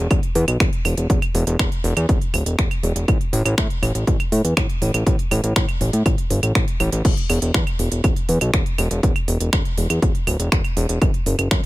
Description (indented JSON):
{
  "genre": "melodic techno",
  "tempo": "121 BPM",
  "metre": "4/4",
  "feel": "straight",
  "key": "unclear",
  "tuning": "A4 = 439 Hz",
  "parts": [
    { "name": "fat analog bass", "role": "bass", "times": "0.0-11.6 s", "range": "D1 to A2", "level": "-20 LUFS", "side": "equal", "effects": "sidechain pumping" },
    { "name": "electronic kick drum", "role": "drums", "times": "0.1-11.6 s", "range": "none", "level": "-20 LUFS", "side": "equal", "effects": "none" },
    { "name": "techno drum kit", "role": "drums", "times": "0.1-11.7 s", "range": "claves, crash cymbal, finger snaps, hi-hat", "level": "-25 LUFS", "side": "right 2 dB", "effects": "sidechain pumping on hats, sidechain pumping on perc, sidechain pumping on cymbals" }
  ],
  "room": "little or no reverb",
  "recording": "none",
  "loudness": "-17 LUFS",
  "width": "side -17 dB against mid",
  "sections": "0.0-11.7 A section",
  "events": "none",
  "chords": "none"
}